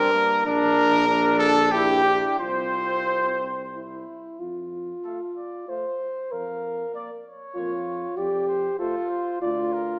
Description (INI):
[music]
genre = classical, brass quintet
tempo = 87-98 BPM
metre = 3/4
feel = rubato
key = F major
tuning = A4 = 440 Hz
[part]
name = mellow trumpet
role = melody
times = 0.0-10.0 s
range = G4 to F5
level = -28 LUFS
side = equal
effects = none
[part]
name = warm flugelhorn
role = second line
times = 0.0-9.6 s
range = G4 to F5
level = -29 LUFS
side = equal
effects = none
[part]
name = mellow trombone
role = accompaniment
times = 0.0-9.6 s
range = A3 to E4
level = -31 LUFS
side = equal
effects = none
[part]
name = warm French horn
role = accompaniment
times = 0.0-10.0 s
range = D4 to C5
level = -31 LUFS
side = equal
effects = none
[part]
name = mellow tuba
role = bass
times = 0.0-10.0 s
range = Bb1 to G2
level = -36 LUFS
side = equal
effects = none
[sound]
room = wet recital hall reverb, RT60 1.6 s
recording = small speaker sound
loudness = -24 LUFS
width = mono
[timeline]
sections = 0.0-4.4 A section; 4.4-10.0 B section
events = none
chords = 0.5 Gm/Bb; 2.4 F5/C; 3.7 C; 4.4 F; 6.3 Bb/F; 8.2 F; 9.4 Dm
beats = | 0.46 1.08 1.71 | 2.39 3.07 3.74 | 4.41 5.05 5.70 | 6.34 6.95 7.57 | 8.18 8.80 9.42